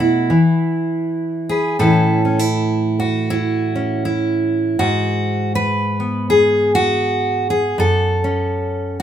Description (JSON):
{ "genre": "folk, solo fingerstyle acoustic guitar", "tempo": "80 BPM", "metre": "4/4", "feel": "swing 60% on 8ths", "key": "unclear", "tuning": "A4 = 440 Hz", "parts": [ { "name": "fingerpicked steel-string acoustic guitar", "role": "solo", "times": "0.0-9.0 s", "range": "F#2 to B4", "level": "-15 LUFS", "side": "equal", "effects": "none" } ], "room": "light reverb", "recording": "minimal, uncompressed stereo recording", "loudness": "-15 LUFS", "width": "side -10 dB against mid", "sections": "0.0-1.8 A section; 1.8-9.0 B section", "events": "none", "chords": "0.3 E5; 1.8 A; 4.8 Eadd9/G#; 7.8 F#m", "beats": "0.29 1.04 | 1.79 2.54 3.29 4.04 | 4.79 5.54 6.29 7.04 | 7.78 8.53" }